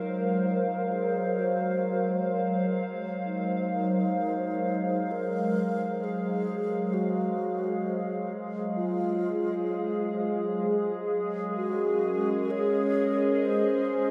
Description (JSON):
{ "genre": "ambient", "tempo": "free time", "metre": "none", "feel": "none", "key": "Ab mixolydian", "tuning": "A4 = 440 Hz", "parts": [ { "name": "mellow hollow alto flute", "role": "melody", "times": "0.0-14.1 s", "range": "Eb4 to Db5", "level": "-35 LUFS", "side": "equal", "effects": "diffuse ambient delay" }, { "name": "warbly tape-like pad", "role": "sustained chords", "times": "0.0-14.1 s", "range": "Gb3 to F5", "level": "-29 LUFS", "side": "equal", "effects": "chorus, built-in reverb, phaser" }, { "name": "organ-like drone", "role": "drone", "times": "11.0-14.1 s", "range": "Ab3 to Ab4", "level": "-38 LUFS", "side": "equal", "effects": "ensemble chorus, built-in reverb" } ], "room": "wet huge ambient reverb, RT60 8.4 s", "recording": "none", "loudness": "-28 LUFS", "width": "mono", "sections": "0.0-14.1 A section", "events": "fade-in on alto flute 0.0-14.1", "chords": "0.0 Ab13; 10.6 Gb6" }